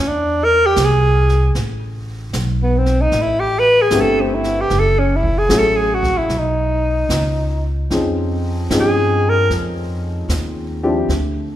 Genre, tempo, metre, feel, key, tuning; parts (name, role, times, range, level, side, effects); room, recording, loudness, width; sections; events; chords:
jazz ballad; 76 BPM; 4/4; swing 67% on 8ths; A4 = 438 Hz
breathy alto saxophone; melody; 0.0-9.5 s; B3 to B4; -16 LUFS; equal
upright bass; bass; 0.0-11.6 s; F#1 to G2; -19 LUFS; equal
jazz brush drum kit; drums; 0.8-11.6 s; brushed snare drum, hi-hat, kick drum, snare drum; -27 LUFS; right 2 dB
clear upright piano; accompaniment; 3.9-11.1 s; F3 to Ab4; -20 LUFS; left 2 dB
light reverb; -14 LUFS; side -12 dB against mid
0.0-11.6 A section
alto saxophone solo 0.0-11.6
0.0 Eaug; 1.5 Am9; 4.7 F#m7; 6.3 Badd9; 7.9 Dbmaj9